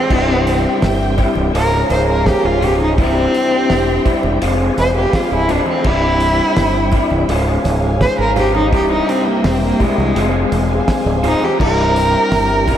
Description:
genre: psychedelic rock.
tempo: 84 BPM.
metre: 4/4.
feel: straight.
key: C phrygian dominant.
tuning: A4 = 440 Hz.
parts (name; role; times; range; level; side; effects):
rich cello; melody; 0.0-12.8 s; Ab3 to C5; -17 LUFS; equal; analog delay.
muted studio string section; sustained chords; 0.0-12.8 s; G4 to Ab5; -23 LUFS; right 2 dB; none.
electric guitar through a small old amp; riff; 0.0-12.8 s; C2 to F4; -18 LUFS; left 2 dB; rotary speaker.
growling fingered electric bass; bass; 0.1-12.7 s; C1 to C2; -19 LUFS; equal; overdrive.
cloth-damped thuddy drum kit; drums; 0.1-12.8 s; crash cymbal, hi-hat, kick drum, snare drum; -21 LUFS; equal; none.
congas; percussion; 0.8-12.8 s; none; -30 LUFS; right 3 dB; none.
room: wet lush hall reverb, RT60 2.5 s.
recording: dreamy mix soaked in reverb.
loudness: -12 LUFS.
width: side -10 dB against mid.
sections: 0.0-12.8 A section.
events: cello solo 0.0-12.8.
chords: 0.1 C; 1.5 Db; 3.0 C; 4.4 Fm; 5.9 C; 7.3 Db; 8.7 C; 10.2 Fm; 11.6 C.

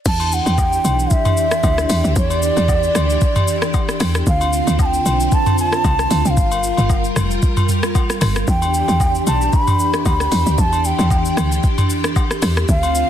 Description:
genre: amapiano.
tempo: 114 BPM.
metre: 4/4.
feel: swing 55% on 16ths.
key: E phrygian.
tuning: A4 = 440 Hz.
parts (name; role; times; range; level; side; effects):
mellow bansuri; melody; 0.1-13.1 s; D5 to B5; -20 LUFS; right 1 dB; digital delay.
string machine, violins; sustained chords; 0.1-13.1 s; D3 to Bb4; -22 LUFS; equal; ensemble chorus, sidechain pumping.
woody log drum bass; bass; 0.1-13.0 s; F1 to E2; -18 LUFS; equal; none.
smooth R&B drum kit; drums; 0.1-13.1 s; crash cymbal, hi-hat, kick drum, rim click, shaker, toms; -18 LUFS; equal; none.
agogo bells and woodblock; percussion; 0.2-12.9 s; none; -28 LUFS; left 6 dB; none.
room: digital ambience.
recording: dense, heavily limited modern master.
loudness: -14 LUFS.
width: side -10 dB against mid.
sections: 0.1-13.1 A section.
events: drop 0.1-13.1.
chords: 0.1 Em7; 4.3 Dm7; 6.4 Gm7; 8.5 Em7.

